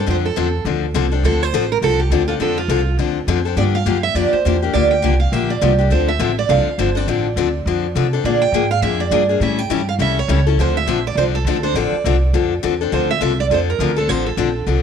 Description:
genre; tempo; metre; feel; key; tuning
acoustic string swing (jazz manouche); 206 BPM; 4/4; swing 58% on 8ths; D minor; A4 = 440 Hz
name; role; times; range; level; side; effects
picked steel-string acoustic guitar; melody; 0.0-14.6 s; F4 to G5; -20 LUFS; right 8 dB; none
picked steel-string acoustic guitar; accompaniment; 0.0-14.8 s; D3 to A4; -19 LUFS; left 10 dB; none
upright bass; bass; 0.0-14.8 s; G1 to C3; -19 LUFS; right 1 dB; none
room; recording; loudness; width
moderate echo chamber reverb, RT60 1.3 s, studio reverb; 1960s-style stereo with parts hard left and right; -15 LUFS; side -7 dB against mid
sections
0.0-12.9 A section; 12.9-14.8 A section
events
none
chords
0.0 Dm7; 3.6 Gm7; 5.9 Dm7; 8.2 Bb7; 9.4 A7#9; 10.6 Dm7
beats
| 0.07 0.36 0.65 0.94 | 1.24 1.53 1.82 2.11 | 2.40 2.69 2.98 3.28 | 3.57 3.86 4.15 4.44 | 4.74 5.03 5.32 5.61 | 5.90 6.19 6.49 6.78 | 7.07 7.36 7.65 7.95 | 8.24 8.53 8.82 9.11 | 9.40 9.70 9.99 10.28 | 10.57 10.87 11.16 11.45 | 11.74 12.04 12.33 12.62 | 12.91 13.21 13.50 13.79 | 14.09 14.38 14.67

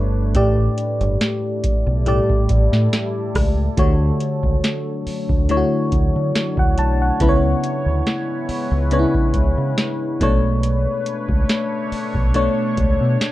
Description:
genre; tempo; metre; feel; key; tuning
contemporary R&B; 70 BPM; 4/4; swing 54% on 16ths; B minor; A4 = 440 Hz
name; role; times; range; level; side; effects
FM electric piano; accompaniment; 0.0-13.3 s; A2 to A5; -20 LUFS; left 1 dB; chorus
deep dark ambient pad; sustained chords; 0.0-13.3 s; F#3 to D5; -28 LUFS; equal; chorus, built-in reverb
deep dub fingered electric bass; bass; 0.0-13.2 s; G1 to D3; -19 LUFS; equal; none
booming analog drum machine; drums; 0.3-13.3 s; hi-hat, kick drum, rim click, snare drum; -20 LUFS; equal; none
room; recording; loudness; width
light reverb; worn, warbling old tape, cassette tape, warbly pitch drift; -16 LUFS; side -15 dB against mid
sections
0.0-13.3 A section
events
none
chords
0.3 A7sus4; 3.8 Dmaj7; 7.2 C#m7; 10.2 Bm9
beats
| 0.35 1.21 2.06 2.92 | 3.78 4.63 5.49 6.35 | 7.21 8.06 8.92 9.78 | 10.63 11.49 12.35 13.21

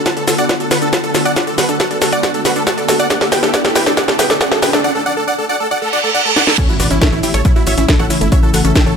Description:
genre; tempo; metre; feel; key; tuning
uplifting trance; 138 BPM; 4/4; straight; D major; A4 = 440 Hz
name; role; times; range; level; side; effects
analog string pad; sustained chords; 0.0-9.0 s; C#3 to A4; -21 LUFS; left 2 dB; ensemble chorus, sidechain pumping
riser, reverse cymbal and impact; sound effects; 1.1-8.3 s; none; -21 LUFS; right 2 dB; none
dense compressed supersaw; melody; 0.1-8.9 s; E4 to A5; -18 LUFS; right 1 dB; sidechain pumping, tape echo
wide unison pluck; arpeggios; 0.1-8.9 s; A3 to D5; -22 LUFS; right 1 dB; sidechain pumping, tape echo
electronic kick drum; drums; 0.1-8.8 s; none; -15 LUFS; equal; high-pass filter on kick, high-pass filter on room
techno drum kit; drums; 0.1-9.0 s; crash cymbal, hi-hat, shaker, snare drum; -16 LUFS; equal; none
tight sequencer bass; bass; 6.8-8.9 s; G1 to A1; -17 LUFS; equal; sidechain pumping
room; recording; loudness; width
light reverb; none; -12 LUFS; side -6 dB against mid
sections
0.0-6.6 A section; 6.6-9.0 B section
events
build-up 0.0-6.6; drum fill 0.0-4.8, 6.4; riser 1.1-4.8; reverse cymbal 5.8-6.6; drop 6.6-9.0; impact 6.6-8.3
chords
0.0 D6; 3.1 G6; 6.6 A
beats
0.06 0.49 0.93 | 1.36 1.80 2.23 2.67 | 3.10 3.54 3.97 4.41 | 4.84 5.28 5.71 6.15 | 6.58 7.01 7.45 7.88 | 8.32 8.76

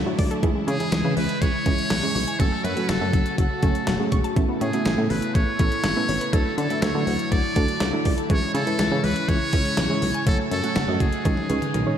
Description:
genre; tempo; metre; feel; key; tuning
synth-pop; 122 BPM; 4/4; straight; C# minor; A4 = 440 Hz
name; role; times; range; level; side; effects
string machine, full ensemble; sustained chords; 0.0-12.0 s; C#3 to F#4; -30 LUFS; equal; phaser, ensemble chorus, shimmer reverb
resonant blip pluck; arpeggios; 0.0-12.0 s; D#3 to C#6; -30 LUFS; left 3 dB; chorus, diffuse ambient delay, shimmer reverb
solid FM bass; bass; 0.0-11.8 s; E1 to D3; -26 LUFS; equal; none
soft round pluck; accompaniment; 0.1-12.0 s; E3 to D#5; -27 LUFS; right 2 dB; chorus, shimmer reverb
clean 12-bit digital drum machine; drums; 0.2-11.9 s; hi-hat, kick drum, snare drum, toms; -25 LUFS; equal; overdrive
trumpet with metal mute; melody; 0.7-12.0 s; G#4 to D5; -27 LUFS; equal; diffuse ambient delay, shimmer reverb
room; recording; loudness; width
moderate lush hall reverb, RT60 2.1 s; dreamy mix soaked in reverb; -20 LUFS; side -9 dB against mid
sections
0.0-12.0 A section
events
drum fill 11.2-12.0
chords
0.4 C#m; 2.4 F#m; 4.4 Aadd9; 6.3 Dadd9; 8.3 C#m; 10.3 F#m; 11.2 C#sus2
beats
| 0.43 0.92 1.41 1.91 | 2.40 2.89 3.38 3.87 | 4.37 4.86 5.35 5.84 | 6.33 6.82 7.32 7.81 | 8.30 8.79 9.28 9.78 | 10.27 10.76 11.25 11.74

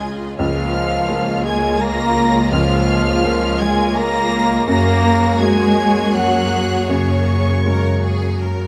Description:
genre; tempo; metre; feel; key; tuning
cinematic, emotional film score for orchestra; 83 BPM; 3/4; uneven beats, rubato; unclear; A4 = 440 Hz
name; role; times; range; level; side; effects
warm symphonic violin section; melody; 0.0-8.7 s; Db6 to Bb6; -29 LUFS; equal; none
bright symphonic violin section; second line; 0.0-8.7 s; Ab4 to Eb5; -30 LUFS; equal; none
flute section; second line; 0.0-8.7 s; Db5 to Bb5; -25 LUFS; equal; none
felt-muted upright piano; accompaniment; 0.0-8.7 s; Db2 to Eb5; -24 LUFS; equal; none
rich symphonic viola section; accompaniment; 0.0-8.7 s; Db3 to Gb4; -26 LUFS; equal; none
mellow French horn section; sustained chords; 0.0-8.7 s; Db3 to Bb3; -26 LUFS; equal; none
rich symphonic cello section; bass; 0.0-8.7 s; Db3 to Bb3; -25 LUFS; equal; none
warm studio double bass section; bass; 0.0-8.7 s; Db2 to Gb2; -25 LUFS; equal; none
room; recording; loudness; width
light reverb; close, detailed microphones; -17 LUFS; mono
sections
0.0-8.7 A section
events
none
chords
0.4 Bbm7/Db; 4.7 Gbadd9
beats
| 0.40 1.10 1.81 | 2.52 3.24 3.97 | 4.69 5.41 6.15 | 6.90 7.66 8.41

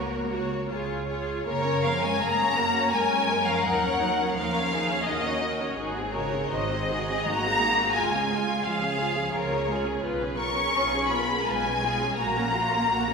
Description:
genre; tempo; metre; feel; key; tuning
classical, slow romantic movement for string orchestra; 75-88 BPM; 3/4; rubato; F# major; A4 = 440 Hz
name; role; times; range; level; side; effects
rich studio violin section; melody; 0.0-13.1 s; C#5 to C#6; -26 LUFS; left 2 dB; none
rich chamber violin section; second line; 0.0-13.1 s; E#4 to B#4; -31 LUFS; left 3 dB; none
rich studio viola section; accompaniment; 0.0-13.1 s; G#3 to C#5; -31 LUFS; right 1 dB; none
rich chamber double bass section; bass; 0.0-13.1 s; G#1 to F#2; -36 LUFS; right 3 dB; none
warm chamber cello section; bass; 0.0-13.1 s; C#3 to C#4; -33 LUFS; right 4 dB; none
room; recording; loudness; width
wet scoring stage reverb, RT60 1.6 s; recorded in a church or concert hall; -23 LUFS; side -5 dB against mid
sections
0.0-1.5 A section; 1.5-13.1 B section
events
none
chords
0.0 F#/C#; 0.7 C#; 1.5 F#; 3.7 D#m7; 5.8 G#7; 8.0 C#; 10.0 C#7/B; 12.2 F#/A#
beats
0.69 | 1.47 2.22 2.93 | 3.65 4.37 5.07 | 5.77 6.51 7.28 | 7.97 8.67 9.35 | 10.04 10.74 11.46 | 12.17 12.88

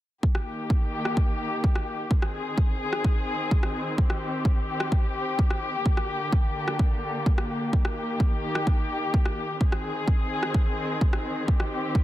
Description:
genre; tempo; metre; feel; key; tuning
EDM, festival progressive house; 128 BPM; 4/4; straight; Eb major; A4 = 440 Hz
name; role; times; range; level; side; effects
muted chamber string section; sustained chords; 0.2-12.0 s; D3 to Ab4; -29 LUFS; left 2 dB; sidechain pumping
electronic kick drum; drums; 0.2-12.0 s; none; -23 LUFS; equal; overdrive
electronic rim click; drums; 0.3-11.7 s; none; -34 LUFS; equal; overdrive
room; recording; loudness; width
small room ambience; none; -23 LUFS; side -14 dB against mid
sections
0.2-12.0 A section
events
none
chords
0.2 Eb; 2.1 Ab; 4.0 Cm; 5.9 Gm; 7.7 Eb; 9.6 Ab; 11.5 Cm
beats
| 0.23 0.70 1.17 1.64 | 2.11 2.58 3.04 3.51 | 3.98 4.45 4.92 5.39 | 5.86 6.33 6.79 7.26 | 7.73 8.20 8.67 9.14 | 9.61 10.07 10.54 11.01 | 11.48 11.95

